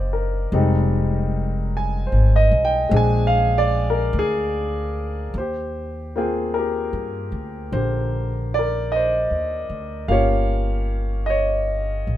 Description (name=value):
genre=jazz ballad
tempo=50 BPM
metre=4/4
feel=swing 69% on 8ths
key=Eb major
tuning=A4 = 440 Hz
part: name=warm concert grand piano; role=accompaniment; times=0.0-12.2 s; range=D3 to Ab5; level=-22 LUFS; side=equal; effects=none
part: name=upright bass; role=bass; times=0.0-12.2 s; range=F1 to G2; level=-22 LUFS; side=equal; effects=none
room=light reverb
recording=minimal, uncompressed stereo recording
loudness=-19 LUFS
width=side -12 dB against mid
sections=0.0-5.3 A section; 5.3-12.2 B section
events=none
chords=0.0 Eb6; 0.5 Fm7; 2.9 Bb9; 5.3 Eb6; 10.1 Gm7b5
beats=| 0.52 1.71 2.91 4.13 | 5.33 6.53 7.72 8.90 | 10.08 11.26